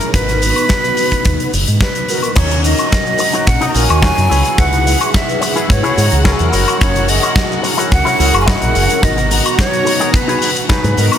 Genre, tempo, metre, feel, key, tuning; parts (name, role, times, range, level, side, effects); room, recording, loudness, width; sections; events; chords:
nu-disco, nu disco; 108 BPM; 4/4; straight; A4 = 440 Hz
breathy jazz flute; melody; 0.0-11.2 s; G#4 to A#5; -18 LUFS; equal; dub echo
mellow synth brass; accompaniment; 0.0-11.2 s; B3 to A#5; -21 LUFS; equal; chorus, phaser, sidechain pumping
huge arena drum kit; drums; 0.0-11.2 s; crash cymbal, hi-hat, shaker, snare drum, woodblock; -18 LUFS; left 2 dB
fingered electric bass with an envelope filter; bass; 0.1-11.1 s; F#1 to G#2; -16 LUFS; equal; sidechain pumping
kick drum; drums; 0.1-10.8 s; -17 LUFS; equal
warm symphonic string section; sustained chords; 2.4-11.2 s; F#4 to F#5; -24 LUFS; left 2 dB; sidechain pumping
electric guitar with an envelope filter; riff; 2.4-11.0 s; D#4 to E5; -21 LUFS; left 4 dB; lush chorus
studio ambience; -11 LUFS; side -9 dB against mid
0.0-2.4 A section; 2.4-11.2 B section
drop 2.4-11.2
0.1 G#m7; 2.4 D#m7; 4.3 C#m7; 6.5 F#7; 9.0 G#m7